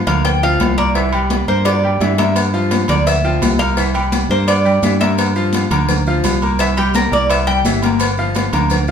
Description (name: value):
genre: latin, salsa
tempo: 170 BPM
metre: 4/4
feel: straight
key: unclear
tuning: A4 = 438 Hz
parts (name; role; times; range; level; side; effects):
- Cuban tres; melody; 0.1-7.6 s; G4 to G5; -18 LUFS; equal; none
- bright grand piano; accompaniment; 0.1-8.9 s; E3 to Bb5; -20 LUFS; left 1 dB; none
- fingered electric bass; bass; 0.1-8.9 s; G1 to G2; -17 LUFS; right 1 dB; none
- agogo bells and timbales; percussion; 0.1-8.7 s; none; -24 LUFS; equal; none
- congas; percussion; 0.1-8.9 s; none; -22 LUFS; left 3 dB; none
- cowbell and bongos; percussion; 0.1-8.9 s; none; -24 LUFS; left 2 dB; none
- maracas; percussion; 2.4-8.9 s; none; -31 LUFS; right 5 dB; none
room: wet large studio reverb, RT60 1.1 s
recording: band playing live in one room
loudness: -13 LUFS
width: side -7 dB against mid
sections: 0.0-8.9 A section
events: Cuban tres solo 0.0-8.9; drum fill 1.7-2.4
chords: 0.0 Gm7 (rootless); 1.0 C9; 2.4 Gm7; 3.8 C9; 5.2 Gm7; 6.6 C7; 8.0 Gm7